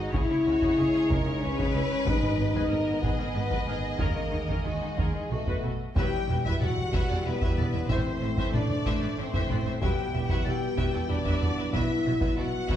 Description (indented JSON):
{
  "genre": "cinematic, epic orchestral film score",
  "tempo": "94 BPM",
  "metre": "3/4",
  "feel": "straight",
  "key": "G# minor, E minor from 6.0 s",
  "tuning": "A4 = 438 Hz",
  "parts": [
    { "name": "rich symphonic violin section", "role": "melody", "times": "0.0-12.8 s", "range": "C#5 to E5", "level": "-39 LUFS", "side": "left 1 dB", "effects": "none" },
    { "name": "rich symphonic violin section", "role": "second line", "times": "0.0-12.8 s", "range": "D#4 to G5", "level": "-36 LUFS", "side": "left 3 dB", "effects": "none" },
    { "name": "mellow French horn section", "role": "sustained chords", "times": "0.0-12.8 s", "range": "G#3 to G4", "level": "-30 LUFS", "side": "left 2 dB", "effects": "none" },
    { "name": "warm trombone section", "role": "sustained chords", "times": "0.0-12.8 s", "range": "C#3 to B3", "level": "-37 LUFS", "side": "right 2 dB", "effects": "none" },
    { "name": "warm symphonic viola section", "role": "accompaniment", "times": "0.1-12.8 s", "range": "E3 to C5", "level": "-39 LUFS", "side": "equal", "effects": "none" },
    { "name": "warm studio double bass section", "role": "bass", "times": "0.1-12.7 s", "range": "E1 to D#2", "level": "-33 LUFS", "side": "right 2 dB", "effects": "none" },
    { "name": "warm symphonic cello section", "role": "bass", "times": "0.1-12.8 s", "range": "E2 to D#3", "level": "-34 LUFS", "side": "right 1 dB", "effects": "none" },
    { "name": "taiko ensemble", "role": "drums", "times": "0.1-12.8 s", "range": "none", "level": "-31 LUFS", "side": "equal", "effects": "none" },
    { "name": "timpani", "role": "percussion", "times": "2.1-3.0 s", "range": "G#2", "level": "-37 LUFS", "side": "left 1 dB", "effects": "none" }
  ],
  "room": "wet scoring stage reverb, RT60 1.7 s",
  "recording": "small room ambience",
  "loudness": "-25 LUFS",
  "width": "side -10 dB against mid",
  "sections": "0.0-6.0 A section; 6.0-12.8 B section",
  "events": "none",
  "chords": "0.1 C#m; 2.1 G#madd9; 4.0 D#sus4; 5.3 B7; 6.0 Emadd9; 7.9 Am; 9.8 Emadd9; 11.7 Bsus4"
}